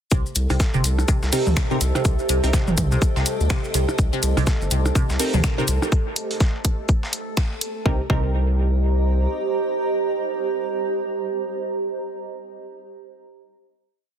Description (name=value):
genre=minimal techno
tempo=124 BPM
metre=4/4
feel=swing 59% on 16ths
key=C dorian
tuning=A4 = 440 Hz
part: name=resonant blip pluck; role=riff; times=0.1-8.3 s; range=C3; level=-27 LUFS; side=equal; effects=phaser, analog chorus, sidechain pumping, dub echo
part: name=saturated sub bass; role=bass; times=0.1-9.3 s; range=G1 to D2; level=-21 LUFS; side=equal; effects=sidechain pumping
part: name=breakbeat sampler-style drum kit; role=drums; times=0.1-7.8 s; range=hi-hat, shaker, snare drum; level=-33 LUFS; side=equal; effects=sidechain pumping on perc, high-pass filter on perc, sidechain pumping on hats, high-pass filter on hats, high-pass filter on snare
part: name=electronic kick drum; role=drums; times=0.1-8.3 s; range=none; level=-20 LUFS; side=equal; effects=none
part: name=maracas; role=percussion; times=0.1-5.9 s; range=none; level=-32 LUFS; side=left 4 dB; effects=none
part: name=bubbling stepped-filter texture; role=texture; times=0.1-7.9 s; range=A3 to A4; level=-33 LUFS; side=equal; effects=chorus, built-in reverb, sidechain pumping
part: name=granular cloud pad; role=texture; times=0.9-11.6 s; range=G4 to Bb5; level=-27 LUFS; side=right 3 dB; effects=built-in reverb, sidechain pumping
part: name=garage drum kit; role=drums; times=0.4-7.7 s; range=finger snaps, hi-hat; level=-26 LUFS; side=equal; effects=soft clipping on snare
part: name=electronic percussion blips and toms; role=percussion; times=0.5-5.9 s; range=none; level=-26 LUFS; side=right 2 dB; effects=dub echo
part: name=wavetable chord stab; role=stabs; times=1.3-11.7 s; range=C4 to Bb4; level=-28 LUFS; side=right 1 dB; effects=dub echo
room=little or no reverb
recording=dense, heavily limited modern master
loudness=-19 LUFS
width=side -9 dB against mid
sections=0.1-7.9 drop; 7.9-11.7 final chord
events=drop 0.1-7.9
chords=0.1 Cm; 7.9 Cm7